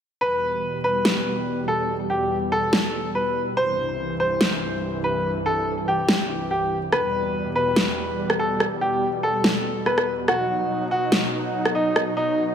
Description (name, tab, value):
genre	heavy wobble dubstep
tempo	143 BPM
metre	4/4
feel	swing 55% on 16ths, half-time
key	E harmonic minor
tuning	A4 = 439 Hz
part	bright baby grand piano	melody	0.2-12.4 s	D#4 to C5	-23 LUFS	equal	digital delay
part	supersaw pad	sustained chords	0.2-12.5 s	C2 to D#4	-27 LUFS	equal	low-pass filter
part	electronic snare drum and rim click	drums	1.1-12.1 s	none	-22 LUFS	equal	none
room	moderate lush hall reverb, RT60 1.9 s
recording	none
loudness	-20 LUFS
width	side -8 dB against mid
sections	0.2-12.5 A section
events	filter sweep on supersaw synth 0.2-12.5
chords	0.2 Em; 3.6 C; 6.9 Em; 10.3 B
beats	| 0.21 0.63 1.05 1.47 | 1.89 2.31 2.73 3.15 | 3.57 3.99 4.41 4.83 | 5.25 5.67 6.09 6.51 | 6.92 7.34 7.76 8.18 | 8.60 9.02 9.44 9.86 | 10.28 10.70 11.12 11.54 | 11.96 12.38